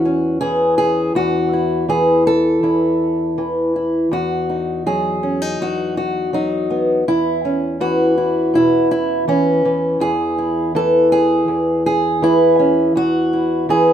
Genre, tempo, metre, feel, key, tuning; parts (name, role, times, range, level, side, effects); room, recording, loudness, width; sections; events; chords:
folk, solo fingerstyle acoustic guitar; 81 BPM; 4/4; straight; E major; A4 = 440 Hz
fingerpicked old ladder-braced acoustic guitar; solo; 0.0-13.9 s; E2 to A4; -14 LUFS; equal
light reverb; minimal, uncompressed stereo recording; -14 LUFS; side -9 dB against mid
0.0-13.9 A section
0.0 C#m/E; 1.1 N.C.; 4.1 B/E (rootless); 7.1 E5; 10.0 C#m/E (rootless); 13.0 Eadd9